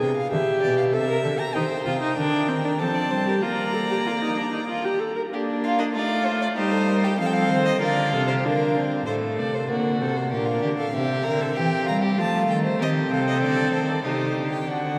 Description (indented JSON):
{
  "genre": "classical, baroque-style fugue for string quartet",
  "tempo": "96 BPM",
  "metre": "3/4",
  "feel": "straight",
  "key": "Bb major",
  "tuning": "A4 = 440 Hz",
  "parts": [
    { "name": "rich violin", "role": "melody", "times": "0.0-15.0 s", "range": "A4 to Bb5", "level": "-31 LUFS", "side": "equal", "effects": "none" },
    { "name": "rich viola", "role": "accompaniment", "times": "0.0-15.0 s", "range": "A3 to Bb4", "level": "-28 LUFS", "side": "equal", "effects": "none" },
    { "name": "warm cello", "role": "bass", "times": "0.0-15.0 s", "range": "A2 to Bb3", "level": "-29 LUFS", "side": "equal", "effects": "none" },
    { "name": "rich violin", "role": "second line", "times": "1.5-15.0 s", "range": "D4 to D5", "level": "-30 LUFS", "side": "equal", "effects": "none" }
  ],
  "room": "wet cathedral reverb, RT60 4.8 s",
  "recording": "none",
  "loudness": "-23 LUFS",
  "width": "mono",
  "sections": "0.0-5.3 A section; 5.3-9.1 B section; 9.1-15.0 A section",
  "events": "none",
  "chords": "0.0 Bdim7(no3); 0.9 C; 1.5 Cm; 2.8 F; 3.4 Bb; 6.6 Cm7/G; 7.2 F7; 8.4 Bb/D; 9.1 D7/A; 10.3 Gm/Bb; 10.9 C7; 12.2 F; 12.8 Cm"
}